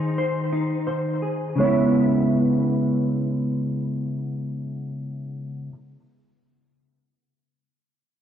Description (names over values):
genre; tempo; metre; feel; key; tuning
dream pop; 83 BPM; 4/4; straight; C# minor; A4 = 440 Hz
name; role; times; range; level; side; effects
felt-muted upright piano; melody; 0.0-5.7 s; B#4 to C#5; -29 LUFS; right 4 dB; low-pass filter, digital delay
clean electric guitar; arpeggios; 0.0-5.8 s; C#3 to B#4; -22 LUFS; equal; ensemble chorus, low-pass filter, digital delay
room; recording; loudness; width
moderate plate reverb, RT60 3.0 s; dark, warm production; -21 LUFS; side -9 dB against mid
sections
0.0-1.6 A section; 1.6-4.5 B section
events
slowing down 0.0-1.6; filter sweep 0.0-1.6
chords
0.0 G#/D#; 1.6 C#m7